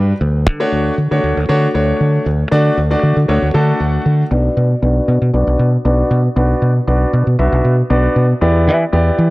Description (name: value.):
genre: pop.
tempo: 117 BPM.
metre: 4/4.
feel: straight.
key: B minor.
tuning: A4 = 444 Hz.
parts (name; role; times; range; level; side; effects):
clear grand piano; accompaniment; 0.0-9.3 s; G3 to A5; -16 LUFS; equal; low-pass filter.
fingered electric bass; bass; 0.0-9.3 s; B1 to E3; -13 LUFS; equal; none.
room: light reverb, studio ambience.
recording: transformer saturation, cassette tape.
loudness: -12 LUFS.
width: side -20 dB against mid.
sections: 0.0-4.3 A section; 4.3-9.3 B section.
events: grand piano fill 0.0, 3.3-4.3; build-up 4.3-9.3; filter sweep on grand piano 4.3-9.3.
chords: 0.2 Dmaj7; 4.3 Bm; 8.4 Em7.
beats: | 0.21 0.72 1.24 1.75 | 2.26 2.77 3.29 3.80 | 4.31 4.83 5.34 5.85 | 6.37 6.88 7.39 7.90 | 8.42 8.93.